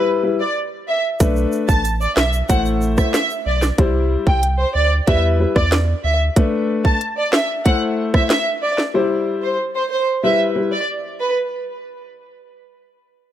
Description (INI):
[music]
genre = dancehall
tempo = 93 BPM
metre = 4/4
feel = straight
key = E minor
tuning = A4 = 442 Hz
[part]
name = warm studio violin section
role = melody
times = 0.0-11.3 s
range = B4 to A5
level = -20 LUFS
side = right 1 dB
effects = tape echo
[part]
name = warm grand piano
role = accompaniment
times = 0.0-10.7 s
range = G3 to C5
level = -20 LUFS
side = left 4 dB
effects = none
[part]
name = warm sub bass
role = bass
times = 1.2-6.3 s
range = A1 to E2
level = -19 LUFS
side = right 1 dB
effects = none
[part]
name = island pop drum kit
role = drums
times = 1.2-8.9 s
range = hi-hat, kick drum, rim click, snare drum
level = -17 LUFS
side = right 1 dB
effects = none
[part]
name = egg shaker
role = percussion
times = 1.2-3.8 s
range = none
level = -36 LUFS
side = right 4 dB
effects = none
[sound]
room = small room reverb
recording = none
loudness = -16 LUFS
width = side -11 dB against mid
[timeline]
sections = 0.0-11.5 A section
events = none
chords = 0.0 Em; 1.2 Bm7; 2.5 Am; 3.8 C; 5.1 Em; 6.4 Bm7; 7.7 Am; 8.9 C; 10.2 Em